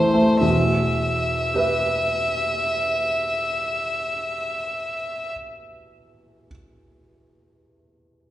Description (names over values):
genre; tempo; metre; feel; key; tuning
classical, romantic duo for violin and grand piano; free time; none; none; E minor; A4 = 440 Hz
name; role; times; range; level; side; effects
rich violin; melody; 0.0-5.3 s; C5 to E5; -22 LUFS; equal; none
bright grand piano; accompaniment; 0.0-8.3 s; E2 to E5; -22 LUFS; equal; none
room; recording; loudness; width
wet recital hall reverb, RT60 1.9 s; heard from further back in the room, nothing above 10.7 kHz; -20 LUFS; side -14 dB against mid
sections
0.4-7.2 A section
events
none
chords
0.4 Em